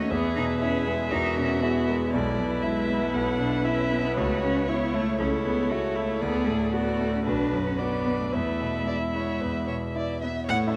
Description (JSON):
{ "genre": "quick classical-period movement for piano quintet", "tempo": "109-120 BPM", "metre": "4/4", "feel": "rubato", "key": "unclear", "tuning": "A4 = 440 Hz", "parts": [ { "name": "warm violin", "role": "melody", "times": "0.0-10.6 s", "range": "B4 to F#5", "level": "-35 LUFS", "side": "equal", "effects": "none" }, { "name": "rich cello", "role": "second line", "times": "0.0-10.8 s", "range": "F#3 to D#4", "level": "-32 LUFS", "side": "equal", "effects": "none" }, { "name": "warm violin", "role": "second line", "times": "0.0-10.8 s", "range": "G#4 to E5", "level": "-36 LUFS", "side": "equal", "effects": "none" }, { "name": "bright concert grand piano", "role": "accompaniment", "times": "0.0-10.8 s", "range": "B1 to E5", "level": "-30 LUFS", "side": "equal", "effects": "none" }, { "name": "rich viola", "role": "accompaniment", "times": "0.0-10.8 s", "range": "D4 to A4", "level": "-36 LUFS", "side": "equal", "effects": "none" } ], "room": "moderate recital hall reverb, RT60 1.6 s", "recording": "close, detailed microphones", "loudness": "-26 LUFS", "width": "mono", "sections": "0.0-10.5 A section", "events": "none", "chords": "0.1 E; 2.1 E5/B; 4.2 A/C#; 6.2 D; 7.3 Bm; 8.3 E" }